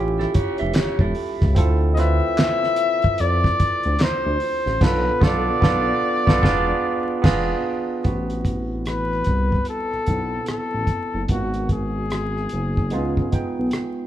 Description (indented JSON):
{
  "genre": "R&B, neo-soul",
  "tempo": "74 BPM",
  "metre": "4/4",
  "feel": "swing 61% on 16ths",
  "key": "unclear",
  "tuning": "A4 = 442 Hz",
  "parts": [
    { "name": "barky tine electric piano", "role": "accompaniment", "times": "0.0-14.1 s", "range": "G#3 to G5", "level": "-26 LUFS", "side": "right 3 dB", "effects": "overdrive" },
    { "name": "smooth synth bass", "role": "bass", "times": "0.0-13.7 s", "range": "E1 to F2", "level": "-24 LUFS", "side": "equal", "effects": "none" },
    { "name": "electric guitar through a small old amp", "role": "second line", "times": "0.2-1.5 s", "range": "E4 to E5", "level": "-29 LUFS", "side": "right 3 dB", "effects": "harmonic tremolo" },
    { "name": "cloth-damped thuddy drum kit", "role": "drums", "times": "0.2-14.0 s", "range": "crash cymbal, handclaps, hi-hat, kick drum, rim click, snare drum", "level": "-21 LUFS", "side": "equal", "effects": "none" },
    { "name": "warm flugelhorn", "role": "melody", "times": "1.9-14.1 s", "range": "F#4 to E5", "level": "-23 LUFS", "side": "left 2 dB", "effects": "none" }
  ],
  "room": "moderate large studio reverb, RT60 1.5 s",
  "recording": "band playing live in one room, vinyl crackle",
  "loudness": "-18 LUFS",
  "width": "side -12 dB against mid",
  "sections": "0.0-8.1 A section; 8.1-14.1 B section",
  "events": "band accent 4.8-8.1",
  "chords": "0.0 A7b13; 1.6 Dm9; 4.8 Bm7b5; 6.4 E7b9; 8.1 Am69; 11.3 G#m7; 12.9 C#9"
}